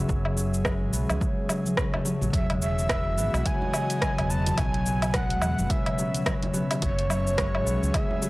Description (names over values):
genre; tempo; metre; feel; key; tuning
organic downtempo; 107 BPM; 4/4; swing 59% on 16ths; F# dorian; A4 = 440 Hz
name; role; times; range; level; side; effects
airy breathy pad; sustained chords; 0.0-8.3 s; B2 to E5; -35 LUFS; equal; chorus, sidechain pumping
concert harp; arpeggios; 0.0-8.3 s; C#3 to C#4; -29 LUFS; left 1 dB; none
mellow fretless electric bass; bass; 0.0-7.9 s; E1 to E2; -28 LUFS; equal; lush chorus, sidechain pumping
deep house drum kit; drums; 0.1-8.3 s; cabasa, hi-hat, rim click, woodblock; -30 LUFS; equal; overdrive
electronic kick drum; drums; 0.1-8.1 s; none; -29 LUFS; equal; overdrive
bongos and congas; percussion; 0.4-8.3 s; none; -36 LUFS; right 1 dB; none
breathy flute-like synth lead; melody; 2.3-8.3 s; C#5 to A5; -30 LUFS; equal; analog chorus, analog delay
room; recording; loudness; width
little or no reverb; dry, gritty hardware recording, cassette tape; -23 LUFS; side -20 dB against mid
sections
0.0-8.3 A section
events
none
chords
0.0 F#m7; 2.3 Emaj7; 4.6 F#m7